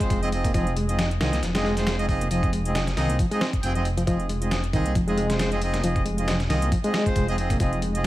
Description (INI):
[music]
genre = breakbeat, breaks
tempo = 136 BPM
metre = 4/4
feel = swing 55% on 16ths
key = F minor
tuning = A4 = 437 Hz
[part]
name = barky reed electric piano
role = riff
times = 0.0-8.1 s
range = Eb3 to C4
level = -28 LUFS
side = left 1 dB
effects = overdrive, fast tremolo, tape echo
[part]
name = bright horn section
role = stabs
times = 0.0-8.1 s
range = C4 to G5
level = -28 LUFS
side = right 2 dB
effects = tape echo
[part]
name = dark detuned saw bass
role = bass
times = 0.0-8.1 s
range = F1 to C2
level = -26 LUFS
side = equal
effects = none
[part]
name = dusty soul sampler-style drum kit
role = drums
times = 0.0-8.1 s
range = hi-hat, kick drum, snare drum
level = -27 LUFS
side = equal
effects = studio reverb
[part]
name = electronic hi-hat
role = drums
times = 0.0-8.1 s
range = none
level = -41 LUFS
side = right 2 dB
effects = studio reverb
[sound]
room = light reverb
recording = vinyl crackle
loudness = -21 LUFS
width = side -16 dB against mid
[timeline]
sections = 0.0-8.1 A section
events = none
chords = 0.0 Fm7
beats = 0.10 | 0.55 0.99 1.43 1.87 | 2.31 2.75 3.19 3.63 | 4.08 4.52 4.96 5.40 | 5.84 6.28 6.72 7.16 | 7.60 8.04